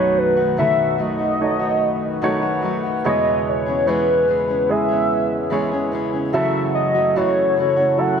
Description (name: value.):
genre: pop.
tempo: 73 BPM.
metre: 4/4.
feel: straight.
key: E major.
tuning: A4 = 441 Hz.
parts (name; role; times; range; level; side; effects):
warm velvety synth lead; melody; 0.0-8.2 s; B4 to F#5; -19 LUFS; equal; chorus, tape echo.
warm baby grand piano; accompaniment; 0.0-8.2 s; B1 to C#5; -23 LUFS; right 4 dB; none.
sweeping resonant pad; sustained chords; 0.0-8.2 s; C#3 to B4; -26 LUFS; left 1 dB; chorus, phaser.
fingerpicked steel-string acoustic guitar; arpeggios; 0.0-8.2 s; F#2 to G#4; -26 LUFS; left 6 dB; none.
room: moderate plate reverb, RT60 3.1 s.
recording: none.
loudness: -17 LUFS.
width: side -7 dB against mid.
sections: 0.0-8.2 A section.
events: none.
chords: 0.0 B7; 3.1 E6; 6.3 F#m7.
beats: 0.59 1.41 2.23 | 3.05 3.88 4.70 5.52 | 6.34 7.16 7.99.